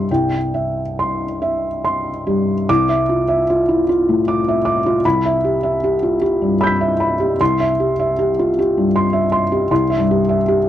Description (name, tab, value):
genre	neoclassical minimalist piano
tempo	67-80 BPM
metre	3/4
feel	rubato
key	C major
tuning	A4 = 440 Hz
part	felt-muted upright piano	solo	0.0-10.7 s	C2 to B6	-15 LUFS	equal	none
room	little or no reverb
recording	dry, close 1970s-style studio recording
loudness	-15 LUFS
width	side -11 dB against mid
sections	0.0-2.7 A section; 2.7-10.7 B section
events	none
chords	0.0 C; 2.7 Dmadd9/C; 5.0 Em/C; 7.4 C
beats	| 0.09 0.97 1.83 | 2.69 3.49 4.27 | 5.04 5.82 6.60 | 7.40 8.18 8.94 | 9.70 10.46